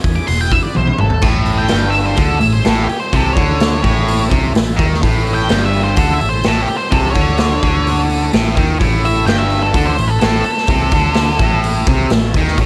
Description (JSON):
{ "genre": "blues rock power trio and southern rock", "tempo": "127 BPM", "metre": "4/4", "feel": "straight", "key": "A major", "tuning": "A4 = 441 Hz", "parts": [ { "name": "overdriven tonewheel organ", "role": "sustained chords", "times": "0.0-12.7 s", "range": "B3 to A5", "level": "-32 LUFS", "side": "equal", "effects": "none" }, { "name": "vintage muted fingered electric bass", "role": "bass", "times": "0.0-12.7 s", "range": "E1 to E2", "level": "-20 LUFS", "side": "equal", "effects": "none" }, { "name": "raw garage drum kit", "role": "drums", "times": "0.0-12.7 s", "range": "crash cymbal, hi-hat, kick drum, snare drum, toms", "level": "-19 LUFS", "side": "equal", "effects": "none" }, { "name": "octave-fuzz lead guitar", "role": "melody", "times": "0.2-11.6 s", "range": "G4 to D6", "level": "-22 LUFS", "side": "equal", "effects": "distortion" }, { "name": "distorted electric guitar", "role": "riff", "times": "1.2-12.7 s", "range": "G2 to D#3", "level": "-20 LUFS", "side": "equal", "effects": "overdrive" } ], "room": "light reverb", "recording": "none", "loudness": "-14 LUFS", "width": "mono", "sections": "0.0-1.2 A section; 1.2-12.7 B section", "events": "lead electric guitar solo 0.0-1.2; drum fill 0.8-1.2; tonewheel organ fill 11.6-12.6", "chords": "0.3 E; 1.2 A", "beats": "0.29 0.77 | 1.24 1.71 2.18 2.66 | 3.13 3.60 4.08 4.55 | 5.02 5.49 5.97 6.44 | 6.91 7.38 7.86 8.33 | 8.80 9.28 9.75 10.22 | 10.69 11.17 11.64 12.11 | 12.59" }